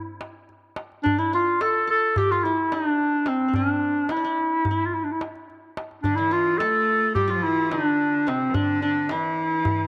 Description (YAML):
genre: Turkish makam ensemble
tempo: 216 BPM (eighths)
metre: 9/8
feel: straight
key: D makam huseyni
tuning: A4 = 440 Hz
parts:
  - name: breathy clarinet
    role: melody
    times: 0.0-9.9 s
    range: C4 to A4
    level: -24 LUFS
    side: equal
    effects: none
  - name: qanun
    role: second line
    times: 0.0-9.9 s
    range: C4 to A4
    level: -36 LUFS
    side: equal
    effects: none
  - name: darbuka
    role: percussion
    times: 0.2-9.8 s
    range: none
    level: -32 LUFS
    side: equal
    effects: none
  - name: clear cello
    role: second line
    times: 6.0-9.9 s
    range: C3 to A3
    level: -33 LUFS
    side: equal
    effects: none
room: wet spring reverb, RT60 2.3 s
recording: none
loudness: -23 LUFS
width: mono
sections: 0.0-9.9 A section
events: none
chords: none